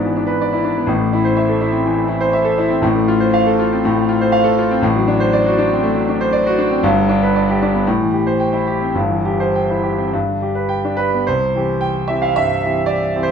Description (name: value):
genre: classical, romantic character piece for solo piano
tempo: 102-126 BPM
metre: 4/4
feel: rubato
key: C major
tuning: A4 = 440 Hz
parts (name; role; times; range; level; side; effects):
- clear concert grand piano; solo; 0.0-13.3 s; G1 to G5; -14 LUFS; equal; none
room: wet large studio reverb, RT60 1.0 s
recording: heard from further back in the room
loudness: -14 LUFS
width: side -7 dB against mid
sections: 0.0-11.3 A section; 11.3-13.3 B section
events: none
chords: 0.0 E7/G#; 0.9 Am; 2.8 F/A; 4.8 D7/A; 6.8 G; 7.9 Am7; 9.0 C/G; 10.1 G; 11.3 C